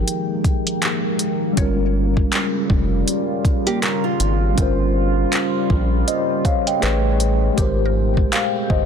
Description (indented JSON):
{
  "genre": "contemporary R&B",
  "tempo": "80 BPM",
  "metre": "4/4",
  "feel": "swing 58% on 16ths",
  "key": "unclear",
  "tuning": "A4 = 440 Hz",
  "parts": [
    { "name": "mellow tine electric piano", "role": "accompaniment", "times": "0.0-8.9 s", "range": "F3 to G5", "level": "-22 LUFS", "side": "left 2 dB", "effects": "medium stereo tremolo" },
    { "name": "deep dark ambient pad", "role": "sustained chords", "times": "0.0-8.9 s", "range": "Bb2 to G5", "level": "-24 LUFS", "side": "right 1 dB", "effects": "chorus, built-in reverb, sidechain pumping" },
    { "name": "rubbery square bass", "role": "bass", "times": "0.0-8.9 s", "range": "F1 to Bb1", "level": "-20 LUFS", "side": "equal", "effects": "none" },
    { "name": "mallet-like synth pluck", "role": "texture", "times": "0.0-8.9 s", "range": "G4 to Eb5", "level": "-36 LUFS", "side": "right 1 dB", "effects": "chorus, tape echo" },
    { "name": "smooth R&B drum kit", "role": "drums", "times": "0.1-8.9 s", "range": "handclaps, hi-hat, kick drum", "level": "-20 LUFS", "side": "equal", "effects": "none" },
    { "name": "nylon-string guitar", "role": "arpeggios", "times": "3.7-4.5 s", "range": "Bb3 to Bb4", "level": "-24 LUFS", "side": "right 7 dB", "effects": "tape echo" }
  ],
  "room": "little or no reverb",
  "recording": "dense, heavily limited modern master",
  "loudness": "-17 LUFS",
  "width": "side -7 dB against mid",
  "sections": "0.0-8.9 A section",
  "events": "none",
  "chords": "0.0 Fm11; 1.6 Gm7b5; 4.6 Eb13/G; 6.8 Amaj9; 7.6 Abmaj9",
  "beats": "0.07 0.82 | 1.57 2.33 3.08 3.83 | 4.58 5.33 6.08 6.83 | 7.58 8.32"
}